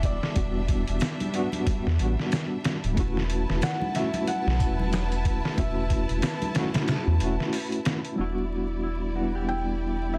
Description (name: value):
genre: trip hop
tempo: 92 BPM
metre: 4/4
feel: swing 59% on 16ths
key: E dorian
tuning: A4 = 439 Hz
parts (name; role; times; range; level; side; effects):
- felt-muted upright piano; melody; 0.0-10.2 s; D5 to G5; -37 LUFS; equal; tape echo
- tine electric piano; accompaniment; 0.0-10.2 s; G3 to F#4; -33 LUFS; equal; tremolo, tape echo
- warm symphonic violin section; sustained chords; 0.0-10.2 s; G3 to A5; -39 LUFS; equal; none
- round analog bass; bass; 0.0-10.2 s; D1 to E2; -30 LUFS; equal; none
- trip hop sampler-style drum kit; drums; 0.0-8.2 s; hi-hat, kick drum, snare drum; -30 LUFS; equal; none
- maracas and congas; percussion; 1.0-7.7 s; none; -38 LUFS; equal; none
- concert harp; arpeggios; 8.2-10.2 s; E4 to G4; -37 LUFS; equal; low-pass filter, digital delay
room: small room reverb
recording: dense, heavily limited modern master, vinyl crackle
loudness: -27 LUFS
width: mono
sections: 0.0-8.2 A section; 8.2-10.2 B section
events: kick drops out 6.9-8.2; filter sweep on harp 8.2-10.2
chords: 0.0 Em7; 3.0 B7sus4/E; 8.2 Em7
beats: | 0.36 1.01 1.66 2.31 | 2.97 3.62 4.27 4.92 | 5.58 6.23 6.88 7.53 | 8.18 8.84 9.49 10.14